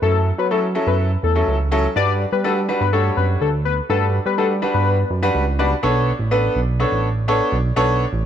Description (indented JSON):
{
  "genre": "dance-pop",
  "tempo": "124 BPM",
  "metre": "4/4",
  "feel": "straight",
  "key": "B minor",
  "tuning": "A4 = 441 Hz",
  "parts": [
    { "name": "wide unison lead", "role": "melody", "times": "0.0-5.7 s", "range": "A4 to D5", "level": "-22 LUFS", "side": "left 8 dB", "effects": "slapback echo" },
    { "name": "clear concert grand piano", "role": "accompaniment", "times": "0.0-8.0 s", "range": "F#3 to D5", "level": "-20 LUFS", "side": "equal", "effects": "none" },
    { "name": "chorused synth bass", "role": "bass", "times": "0.0-8.3 s", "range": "A1 to G3", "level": "-20 LUFS", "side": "right 2 dB", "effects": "none" }
  ],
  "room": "light reverb, small room ambience",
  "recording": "none",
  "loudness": "-16 LUFS",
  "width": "side -9 dB against mid",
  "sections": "0.0-5.8 A section; 5.8-8.3 B section",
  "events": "none",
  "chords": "0.0 F#m7; 2.0 Gmaj7; 5.8 Bm9",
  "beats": "| 0.02 0.51 0.99 1.48 | 1.96 2.44 2.93 3.41 | 3.90 4.38 4.86 5.35 | 5.83 6.32 6.80 7.28 | 7.77 8.25"
}